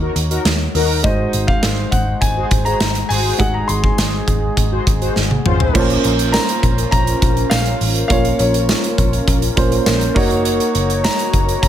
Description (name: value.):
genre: 1980s-style pop.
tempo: 102 BPM.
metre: 4/4.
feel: straight.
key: unclear.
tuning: A4 = 440 Hz.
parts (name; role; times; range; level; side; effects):
warm grand piano; accompaniment; 0.0-11.7 s; Ab3 to Db5; -21 LUFS; right 3 dB; none.
mellow synth brass; stabs; 0.0-11.7 s; Db4 to Db5; -23 LUFS; left 3 dB; chorus.
vintage muted picked electric bass; bass; 0.0-11.7 s; Gb1 to Eb2; -20 LUFS; equal; none.
big rock drum kit; drums; 0.2-11.7 s; crash cymbal, hi-hat, kick drum, snare drum, tambourine, toms; -18 LUFS; equal; none.
warm concert grand piano; melody; 1.0-11.7 s; Db5 to C6; -22 LUFS; left 2 dB; none.
room: light reverb, small room ambience.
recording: none.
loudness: -14 LUFS.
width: side -10 dB against mid.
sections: 0.0-5.7 A section; 5.7-11.7 B section.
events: drum fill 5.2-5.7.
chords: 0.0 Ebm7; 1.0 Ab7; 5.7 Bbmadd9; 10.2 Gb6.